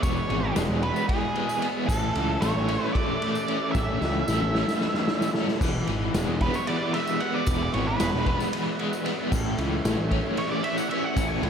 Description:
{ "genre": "psychedelic rock", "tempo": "226 BPM (eighths)", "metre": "7/8", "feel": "straight", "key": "E mixolydian", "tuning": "A4 = 440 Hz", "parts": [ { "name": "octave-fuzz lead guitar", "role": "melody", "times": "0.0-11.5 s", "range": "G#4 to G#5", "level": "-30 LUFS", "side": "right 2 dB", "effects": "distortion, analog delay" }, { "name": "bright tonewheel organ", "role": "sustained chords", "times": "0.0-11.5 s", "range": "G#3 to E5", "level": "-35 LUFS", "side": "right 3 dB", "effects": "slow rotary speaker, overdrive" }, { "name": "overdriven electric guitar", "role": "riff", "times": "0.0-11.5 s", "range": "A2 to C#4", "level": "-28 LUFS", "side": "left 1 dB", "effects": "tremolo" }, { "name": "fuzz picked electric bass", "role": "bass", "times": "0.0-11.5 s", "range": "E1 to C#2", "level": "-29 LUFS", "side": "equal", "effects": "overdrive" }, { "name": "raw garage drum kit", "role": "drums", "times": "0.0-11.5 s", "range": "crash cymbal, kick drum, ride cymbal, snare drum", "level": "-29 LUFS", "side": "equal", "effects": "none" }, { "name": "tambourine", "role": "percussion", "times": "0.0-11.3 s", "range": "none", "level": "-45 LUFS", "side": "left 6 dB", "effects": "none" } ], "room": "moderate plate reverb, RT60 2.4 s", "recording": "dreamy mix soaked in reverb", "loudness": "-23 LUFS", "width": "side -7 dB against mid", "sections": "0.0-5.6 A section; 5.6-11.5 B section", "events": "drum fill 3.8-5.6; lead electric guitar solo 5.6-11.5", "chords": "0.0 Eadd9; 1.9 A; 5.6 Eadd9; 9.3 A", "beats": "| 0.04 0.30 0.57 0.83 1.10 1.36 1.63 | 1.89 2.16 2.42 2.69 2.96 3.22 3.49 | 3.75 4.02 4.28 4.55 4.81 5.08 5.35 | 5.61 5.88 6.14 6.41 6.67 6.94 7.20 | 7.47 7.74 8.00 8.27 8.53 8.79 9.06 | 9.32 9.59 9.85 10.12 10.38 10.64 10.91 | 11.17 11.44" }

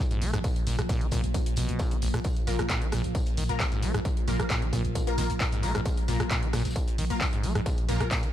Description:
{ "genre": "driving peak-time techno", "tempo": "133 BPM", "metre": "4/4", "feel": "straight", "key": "unclear", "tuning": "A4 = 440 Hz", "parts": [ { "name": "acid bass, saw", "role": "riff", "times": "0.0-8.3 s", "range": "Bb1 to Bb3", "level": "-33 LUFS", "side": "equal", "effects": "sidechain pumping, digital delay" }, { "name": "deep dark ambient pad", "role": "drone", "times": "0.0-8.3 s", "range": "Bb2 to F3", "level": "-35 LUFS", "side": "equal", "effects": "chorus, built-in reverb, sidechain pumping" }, { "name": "techno drum kit", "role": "drums", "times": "0.1-8.3 s", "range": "handclaps, hi-hat, rim click", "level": "-34 LUFS", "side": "equal", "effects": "sidechain pumping on hats, sidechain pumping on cymbals" }, { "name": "growling 808-style bass", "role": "bass", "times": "0.2-8.1 s", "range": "Bb1", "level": "-32 LUFS", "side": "equal", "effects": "tube saturation, sidechain pumping, low-pass filter" }, { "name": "cloth-damped thuddy drum kit", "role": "drums", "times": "0.2-8.2 s", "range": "hi-hat, snare drum, tambourine", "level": "-45 LUFS", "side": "left 2 dB", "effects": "sidechain pumping on hats, high-pass filter on hats, high-pass filter on snare, sidechain pumping on perc, high-pass filter on perc, high-pass filter on room" }, { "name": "electronic kick drum", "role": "drums", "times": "0.4-8.2 s", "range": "none", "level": "-28 LUFS", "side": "equal", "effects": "distortion" }, { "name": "rave stab", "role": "stabs", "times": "2.5-8.1 s", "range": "Bb3 to Bb4", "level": "-35 LUFS", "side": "left 4 dB", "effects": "chorus, built-in reverb, phaser, sidechain pumping, digital delay" } ], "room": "light reverb", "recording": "none", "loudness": "-25 LUFS", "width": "side -12 dB against mid", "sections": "0.0-8.3 A section", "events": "none", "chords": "0.0 Bb5", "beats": "| 0.44 0.89 1.34 1.80 | 2.25 2.70 3.15 3.60 | 4.05 4.50 4.95 5.41 | 5.86 6.31 6.76 7.21 | 7.66 8.11" }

